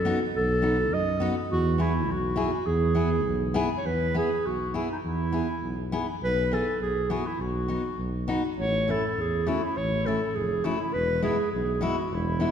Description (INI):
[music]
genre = alpine folk, alpine dance band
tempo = 102 BPM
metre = 2/4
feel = rubato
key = E major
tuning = A4 = 440 Hz
[part]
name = warm clarinet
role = melody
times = 0.0-12.5 s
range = D#4 to D#5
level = -28 LUFS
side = right 1 dB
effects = none
[part]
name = mellow tuba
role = bass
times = 0.0-12.5 s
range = E1 to F#2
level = -29 LUFS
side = right 1 dB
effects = none
[part]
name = fingerpicked steel-string acoustic guitar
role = accompaniment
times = 0.1-12.5 s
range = G#3 to G#4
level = -30 LUFS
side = left 3 dB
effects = none
[sound]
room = wet concert hall reverb, RT60 2.2 s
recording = recorded in a church or concert hall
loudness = -24 LUFS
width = side -8 dB against mid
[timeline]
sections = 0.0-3.9 A section; 3.9-12.5 B section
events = none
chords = 0.0 B7; 1.5 E; 7.4 B; 8.6 A; 10.9 E